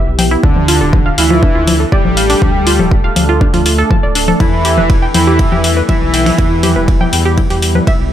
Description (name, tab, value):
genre	melodic techno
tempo	121 BPM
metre	4/4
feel	straight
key	E phrygian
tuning	A4 = 439 Hz
part	deep dark ambient pad	sustained chords	0.0-8.1 s	G3 to A4	-21 LUFS	right 1 dB	chorus, built-in reverb, sidechain pumping
part	warbly dusty pluck	arpeggios	0.0-8.0 s	D4 to A5	-18 LUFS	right 2 dB	chorus, cassette tape, sidechain pumping, ping-pong delay
part	round analog bass	bass	0.1-8.1 s	D1 to E2	-16 LUFS	equal	tube saturation, sidechain pumping
part	punchy analog drum machine	drums	0.2-8.0 s	congas, hi-hat, ride cymbal	-16 LUFS	left 3 dB	sidechain pumping on cymbals, sidechain pumping on perc, sidechain pumping on hats
part	fat analog lead	melody	0.4-7.3 s	D4 to G4	-17 LUFS	equal	lush chorus, sidechain pumping, ping-pong delay
part	soft supersaw	second line	0.4-7.3 s	D3 to G3	-20 LUFS	left 1 dB	sidechain pumping, ping-pong delay
part	electronic kick drum	drums	0.4-8.0 s	none	-12 LUFS	equal	none
room	light reverb, digital ambience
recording	none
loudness	-9 LUFS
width	side -11 dB against mid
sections	0.0-8.1 A section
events	none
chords	0.4 Dm; 4.4 Em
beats	| 0.43 0.93 1.43 1.92 | 2.42 2.91 3.41 3.91 | 4.40 4.90 5.39 5.89 | 6.38 6.88 7.38 7.87